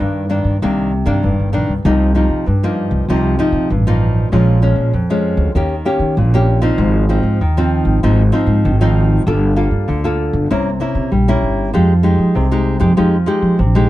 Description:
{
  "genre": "samba and choro",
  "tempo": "97 BPM",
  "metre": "4/4",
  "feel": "straight",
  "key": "C minor",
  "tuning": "A4 = 440 Hz",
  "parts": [
    { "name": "nylon-string guitar", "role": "accompaniment", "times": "0.0-13.9 s", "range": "F2 to A4", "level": "-16 LUFS", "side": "left 1 dB", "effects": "none" },
    { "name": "upright bass", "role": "bass", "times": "0.0-13.9 s", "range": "F1 to F3", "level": "-15 LUFS", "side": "equal", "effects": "none" }
  ],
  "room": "light reverb",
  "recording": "dark, warm production",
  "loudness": "-12 LUFS",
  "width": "side -15 dB against mid",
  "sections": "0.0-1.9 A section; 1.9-13.9 B section",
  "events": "none",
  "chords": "0.0 Cm9; 1.9 Cm7; 4.3 Bbm7; 5.6 Eb7; 6.8 Ab6; 9.3 Gm9; 10.5 C7b9; 11.7 Fm9"
}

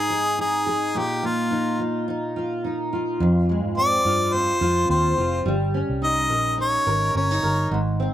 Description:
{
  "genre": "acoustic pop",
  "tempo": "106 BPM",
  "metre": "4/4",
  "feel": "swing 55% on 16ths",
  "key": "Eb major",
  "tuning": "A4 = 440 Hz",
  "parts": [
    { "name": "bright harmonica", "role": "melody", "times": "0.0-7.7 s", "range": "F4 to Eb5", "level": "-22 LUFS", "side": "equal", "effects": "slapback echo" },
    { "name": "fingerpicked steel-string acoustic guitar", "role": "accompaniment", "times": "0.0-8.1 s", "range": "F2 to Bb4", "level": "-24 LUFS", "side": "equal", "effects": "double-tracked left and right, slapback echo" },
    { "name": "vintage muted fingered electric bass", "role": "bass", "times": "3.2-8.1 s", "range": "F1 to Ab2", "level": "-25 LUFS", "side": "right 1 dB", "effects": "none" }
  ],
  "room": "little or no reverb",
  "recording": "recorded outdoors, with no room sound",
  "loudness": "-20 LUFS",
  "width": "side -12 dB against mid",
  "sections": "0.0-8.1 A section",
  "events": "none",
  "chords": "0.0 Ab; 1.0 Bbsus4; 3.2 Fm; 5.5 Eb7/G"
}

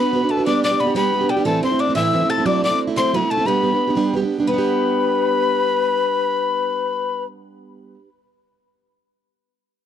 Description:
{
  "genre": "celtic folk, Celtic jig",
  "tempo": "120 BPM (dotted quarters)",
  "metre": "6/8",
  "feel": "straight",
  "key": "G major",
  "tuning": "A4 = 441 Hz",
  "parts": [
    { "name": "wooden whistle", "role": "melody", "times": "0.0-7.2 s", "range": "G5 to A6", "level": "-22 LUFS", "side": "left 2 dB", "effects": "none" },
    { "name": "Irish bouzouki", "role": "second line", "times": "0.0-7.9 s", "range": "G3 to A4", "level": "-28 LUFS", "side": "right 2 dB", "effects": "none" },
    { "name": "baroque flute", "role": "second line", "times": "0.0-7.2 s", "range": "G4 to A5", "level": "-23 LUFS", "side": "left 10 dB", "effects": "none" },
    { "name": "picked plugged-in steel-string acoustic guitar", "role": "accompaniment", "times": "0.0-8.1 s", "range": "A2 to B4", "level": "-21 LUFS", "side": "right 4 dB", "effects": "none" }
  ],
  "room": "small room ambience",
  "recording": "dry, close 1970s-style studio recording",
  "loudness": "-17 LUFS",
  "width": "side -9 dB against mid",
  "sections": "0.0-4.5 A section; 4.5-6.5 B section",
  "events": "none",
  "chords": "0.5 G; 1.5 Am; 2.5 F#m7b5; 3.5 G"
}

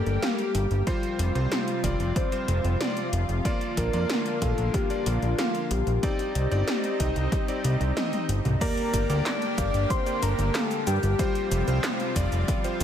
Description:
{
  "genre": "synthwave",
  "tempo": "93 BPM",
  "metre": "4/4",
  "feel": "straight",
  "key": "G minor",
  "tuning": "A4 = 439 Hz",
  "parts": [
    { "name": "soft octave-layered synth lead", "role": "melody", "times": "0.0-11.8 s", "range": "F4 to D5", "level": "-32 LUFS", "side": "left 2 dB", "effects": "chorus, digital delay" },
    { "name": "lush unison pad", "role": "sustained chords", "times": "0.0-12.8 s", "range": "C3 to G4", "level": "-32 LUFS", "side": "left 2 dB", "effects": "chorus, sidechain pumping" },
    { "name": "bright electric grand piano", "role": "stabs", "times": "0.0-12.8 s", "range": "G3 to F5", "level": "-32 LUFS", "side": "right 1 dB", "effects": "ping-pong delay" },
    { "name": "fat analog bass", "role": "bass", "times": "0.0-12.8 s", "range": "F1 to G2", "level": "-25 LUFS", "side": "equal", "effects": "tube saturation, sidechain pumping" },
    { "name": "80s electronic pad drums", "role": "drums", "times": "0.1-12.8 s", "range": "cabasa, crash cymbal, handclaps, hi-hat, snare drum, toms", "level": "-31 LUFS", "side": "equal", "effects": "gated reverb on snare and toms, overdrive" },
    { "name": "electronic kick drum", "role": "drums", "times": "0.9-12.6 s", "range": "none", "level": "-29 LUFS", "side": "equal", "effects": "overdrive" },
    { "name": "FM electric piano with soft pad layer", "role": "second line", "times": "8.6-11.8 s", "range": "G5 to D6", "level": "-35 LUFS", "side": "left 2 dB", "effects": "chorus, phaser, ping-pong delay" }
  ],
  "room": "light reverb",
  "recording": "none",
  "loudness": "-23 LUFS",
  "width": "side -9 dB against mid",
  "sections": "0.0-8.6 A section; 8.6-12.8 B section",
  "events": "drum fill 8.0-8.6",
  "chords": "0.0 Gm; 0.9 Fsus2; 3.5 Bb; 6.0 Cmadd9; 8.6 Gm; 11.2 Fsus2"
}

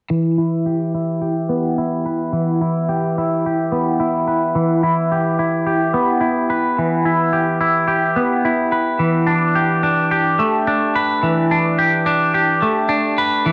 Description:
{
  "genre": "rock",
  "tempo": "108 BPM",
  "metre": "4/4",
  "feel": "straight",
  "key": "E minor",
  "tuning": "A4 = 440 Hz",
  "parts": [
    { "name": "twangy electric guitar", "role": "solo", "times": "0.1-13.5 s", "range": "E3 to B4", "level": "-18 LUFS", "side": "equal", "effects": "phaser, low-pass filter" }
  ],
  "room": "moderate spring reverb, RT60 2.5 s",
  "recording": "none",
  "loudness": "-18 LUFS",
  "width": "mono",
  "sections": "0.1-13.5 A section",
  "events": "filter sweep on clean electric guitar 0.1-13.5",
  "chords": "0.1 Em; 9.0 Gadd9/E"
}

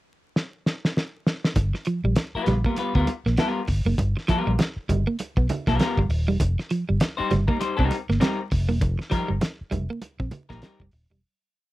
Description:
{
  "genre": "funk",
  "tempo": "99 BPM",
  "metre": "4/4",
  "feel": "swing 60% on 16ths",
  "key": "unclear",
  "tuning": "A4 = 439 Hz",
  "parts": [
    { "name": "cloth-damped thuddy drum kit", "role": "drums", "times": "0.4-11.1 s", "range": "hi-hat, kick drum, snare drum", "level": "-25 LUFS", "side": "equal", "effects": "none" },
    { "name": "vintage muted fingered electric bass", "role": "bass", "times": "1.6-11.2 s", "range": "Eb1 to D2", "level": "-23 LUFS", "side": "equal", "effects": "none" },
    { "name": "congas", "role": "percussion", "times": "1.6-11.2 s", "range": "none", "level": "-31 LUFS", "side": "right 3 dB", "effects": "none" },
    { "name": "clean electric guitar", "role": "riff", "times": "1.8-11.2 s", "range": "F3 to C4", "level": "-27 LUFS", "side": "right 3 dB", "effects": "none" },
    { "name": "semi-hollow electric guitar", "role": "accompaniment", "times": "2.4-10.8 s", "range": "G3 to C5", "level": "-26 LUFS", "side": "left 4 dB", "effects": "none" }
  ],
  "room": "little or no reverb",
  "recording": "dry, close 1970s-style studio recording, vinyl crackle",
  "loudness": "-22 LUFS",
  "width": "side -17 dB against mid",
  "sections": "0.0-1.6 pickup bar; 1.6-11.2 groove",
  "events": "drum fill 0.4-1.6; fade-out 8.8-11.2",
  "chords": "0.0 N.C.; 1.6 G7#9; 6.4 F9sus4"
}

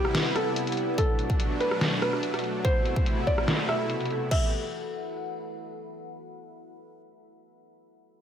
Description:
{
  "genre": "heavy wobble dubstep",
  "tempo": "144 BPM",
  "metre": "4/4",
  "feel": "half-time",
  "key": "E minor",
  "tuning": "A4 = 437 Hz",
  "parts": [
    { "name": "felt-muted upright piano", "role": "melody", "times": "0.0-4.5 s", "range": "G4 to E5", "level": "-30 LUFS", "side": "right 1 dB", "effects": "dub echo" },
    { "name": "supersaw pad", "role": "sustained chords", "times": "0.0-4.5 s", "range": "B2 to G4", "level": "-32 LUFS", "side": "equal", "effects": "sidechain pumping" },
    { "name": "dubstep drum kit", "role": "drums", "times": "0.0-4.4 s", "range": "crash cymbal, hi-hat, rim click, snare drum", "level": "-30 LUFS", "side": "equal", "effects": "low-pass filter on snare, low-pass filter on hats, low-pass filter on cymbals, low-pass filter on room" },
    { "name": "deep dark ambient pad", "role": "texture", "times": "0.0-5.9 s", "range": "E4 to B5", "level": "-34 LUFS", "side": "equal", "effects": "chorus, built-in reverb, sidechain pumping" },
    { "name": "electronic kick drum", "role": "drums", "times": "1.0-4.4 s", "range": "none", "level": "-26 LUFS", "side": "equal", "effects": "none" }
  ],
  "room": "light reverb, digital ambience",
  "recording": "none",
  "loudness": "-24 LUFS",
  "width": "side -9 dB against mid",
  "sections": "0.0-4.3 A section; 4.3-6.0 B section",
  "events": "none",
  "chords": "0.0 Cmaj7; 1.0 Bm7; 2.6 Amadd9; 4.3 Esus2"
}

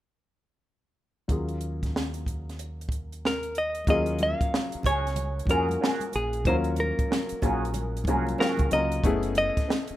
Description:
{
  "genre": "R&B, neo-soul",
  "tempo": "93 BPM",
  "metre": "4/4",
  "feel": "swing 63% on 16ths",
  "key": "Eb minor",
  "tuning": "A4 = 438 Hz",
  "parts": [
    { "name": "warm baby grand piano", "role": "accompaniment", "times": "1.3-10.0 s", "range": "F3 to Bb4", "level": "-30 LUFS", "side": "left 3 dB", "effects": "none" },
    { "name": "deep dub fingered electric bass", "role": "bass", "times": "1.3-9.9 s", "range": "Gb1 to F2", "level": "-31 LUFS", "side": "equal", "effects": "none" },
    { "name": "compact cocktail drum kit", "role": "drums", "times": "1.3-10.0 s", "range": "hi-hat, kick drum, snare drum", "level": "-28 LUFS", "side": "equal", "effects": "none" },
    { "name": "hollow-body jazz guitar", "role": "melody", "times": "3.3-10.0 s", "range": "Ab4 to F5", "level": "-28 LUFS", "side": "equal", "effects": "none" },
    { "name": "congas", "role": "percussion", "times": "3.8-9.5 s", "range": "none", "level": "-40 LUFS", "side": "equal", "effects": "none" },
    { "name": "electric guitar through a small old amp", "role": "second line", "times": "4.5-9.7 s", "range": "Db4 to Ab4", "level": "-32 LUFS", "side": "right 2 dB", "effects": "wah, spring reverb" }
  ],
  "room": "small room reverb",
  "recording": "rough home demo mix",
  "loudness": "-24 LUFS",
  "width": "side -14 dB against mid",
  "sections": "1.3-3.9 A section; 3.9-10.0 B section",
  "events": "none",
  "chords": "1.3 Ebm11; 9.0 Gbm11"
}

